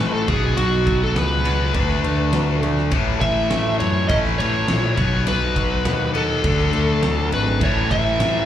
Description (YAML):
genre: quiet-loud alternative rock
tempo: 102 BPM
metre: 4/4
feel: straight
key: unclear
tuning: A4 = 440 Hz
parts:
  - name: smooth overdriven lead guitar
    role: melody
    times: 0.0-8.5 s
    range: F#4 to E5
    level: -23 LUFS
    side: right 1 dB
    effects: slapback echo, digital delay
  - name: twangy electric guitar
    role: arpeggios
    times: 0.0-7.6 s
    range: A2 to E4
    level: -29 LUFS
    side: right 4 dB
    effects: phaser, slapback echo
  - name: cranked stack guitar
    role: riff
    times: 0.0-8.5 s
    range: A2 to D4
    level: -24 LUFS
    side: left 11 dB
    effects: overdrive, spring reverb, slapback echo
  - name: fuzz picked electric bass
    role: bass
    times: 0.0-8.5 s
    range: G#1 to F#2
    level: -21 LUFS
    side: right 1 dB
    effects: overdrive
  - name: huge arena drum kit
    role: drums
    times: 0.3-8.3 s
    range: kick drum, ride cymbal, snare drum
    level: -25 LUFS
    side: equal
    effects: none
  - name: thick fuzz guitar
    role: riff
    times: 7.6-8.5 s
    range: A2 to A3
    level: -25 LUFS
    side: right 11 dB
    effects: distortion
room: little or no reverb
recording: live gig heard through the venue's PA, club reverb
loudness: -17 LUFS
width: side -10 dB against mid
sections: 0.0-8.5 A section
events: none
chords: 0.3 B5; 1.7 D6; 2.9 A; 5.0 B; 6.4 D; 7.6 A5